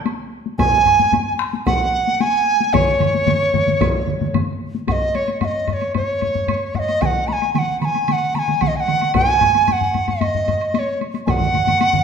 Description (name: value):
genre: japanese traditional, taiko drum ensemble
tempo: 112 BPM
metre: 4/4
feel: straight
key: C# suspended pentatonic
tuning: A4 = 440 Hz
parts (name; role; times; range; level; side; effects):
- solo taiko drums; percussion; 0.1-11.9 s; none; -25 LUFS; left 7 dB; none
- woodblock; percussion; 0.1-11.9 s; none; -31 LUFS; right 3 dB; none
- bright large dizi; melody; 0.6-12.0 s; C#5 to B5; -17 LUFS; right 2 dB; none
- solo taiko drums; percussion; 0.6-12.0 s; none; -25 LUFS; left 5 dB; none
- solo taiko drums; percussion; 0.6-11.4 s; none; -24 LUFS; right 1 dB; none
- solo taiko drums; percussion; 2.7-12.0 s; none; -24 LUFS; right 5 dB; none
room: wet recital hall reverb, RT60 1.5 s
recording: minimal, uncompressed stereo recording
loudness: -16 LUFS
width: side -6 dB against mid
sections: 0.0-4.9 A section; 4.9-12.0 B section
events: none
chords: none